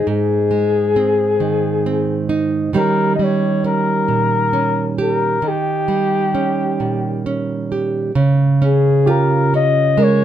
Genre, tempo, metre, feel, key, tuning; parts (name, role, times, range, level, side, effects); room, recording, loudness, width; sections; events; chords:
acoustic folk-pop ballad; 44 BPM (dotted quarters); 6/8; straight; A4 = 440 Hz
mellow flugelhorn; melody; 0.0-10.2 s; G4 to Eb5; -18 LUFS; left 5 dB
nylon-string guitar; accompaniment; 0.0-10.2 s; Ab2 to G4; -17 LUFS; right 3 dB
felt-muted upright piano; arpeggios; 9.1-10.2 s; G4 to Bb4; -20 LUFS; right 4 dB
light reverb; dark, warm production; -14 LUFS; side -10 dB against mid
0.0-8.2 A section; 8.2-10.2 B section
0.0 Ab; 2.7 Eb7; 8.2 Db6